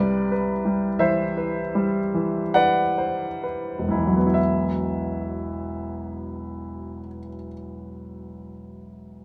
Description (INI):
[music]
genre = classical, impressionist solo piano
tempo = 32-46 BPM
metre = 3/4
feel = rubato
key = E minor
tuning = A4 = 441 Hz
[part]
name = clear baby grand piano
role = solo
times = 0.0-9.2 s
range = E1 to F#5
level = -25 LUFS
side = equal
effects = none
[sound]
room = light reverb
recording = none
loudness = -24 LUFS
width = mono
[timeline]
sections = 0.0-4.4 A section; 4.4-9.2 B section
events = slowing down 0.0-4.4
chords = 0.0 Cmaj7; 4.4 Esus2